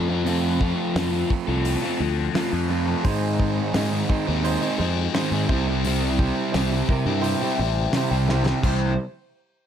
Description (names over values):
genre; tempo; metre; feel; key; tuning
classic rock; 86 BPM; 4/4; straight; unclear; A4 = 439 Hz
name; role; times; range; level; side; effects
crunchy overdriven guitar; riff; 0.0-8.9 s; Ab2 to A4; -26 LUFS; left 10 dB; phaser
crunchy overdriven guitar; riff; 0.0-8.9 s; Ab2 to F4; -26 LUFS; right 9 dB; none
fuzz fingered electric bass; bass; 0.0-9.0 s; A1 to Ab2; -25 LUFS; equal; overdrive
damped 70s drum kit; drums; 0.3-8.8 s; hi-hat, kick drum, snare drum, splash cymbal; -27 LUFS; equal; none
bright upright piano; accompaniment; 3.0-9.0 s; Eb4 to C5; -31 LUFS; right 7 dB; none
overdriven slide guitar; second line; 8.6-9.0 s; C5; -33 LUFS; left 8 dB; none
room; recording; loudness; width
light reverb; none; -20 LUFS; side -9 dB against mid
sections
0.0-8.6 A section; 8.6-9.7 B section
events
drum fill 8.3-8.6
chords
0.0 F; 3.0 Ab; 5.5 C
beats
| 0.25 0.95 1.65 2.35 | 3.05 3.75 4.45 5.14 | 5.84 6.54 7.24 7.93 | 8.63